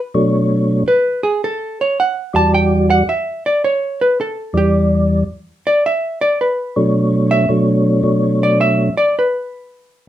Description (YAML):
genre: jazz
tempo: 109 BPM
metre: 4/4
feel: swing 68% on 8ths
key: unclear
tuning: A4 = 440 Hz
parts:
  - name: percussive tonewheel organ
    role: melody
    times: 0.1-8.9 s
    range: E2 to D5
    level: -13 LUFS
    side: equal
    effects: slow rotary speaker, chorus vibrato
  - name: hollow-body jazz guitar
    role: accompaniment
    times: 0.9-10.1 s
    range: G4 to A5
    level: -16 LUFS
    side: right 1 dB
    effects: none
room: wet studio reverb, RT60 0.5 s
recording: band playing live in one room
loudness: -13 LUFS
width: side -12 dB against mid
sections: 0.0-10.1 A section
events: hollow-body jazz guitar solo 0.0-10.1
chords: 0.0 Em7; 6.9 Bm7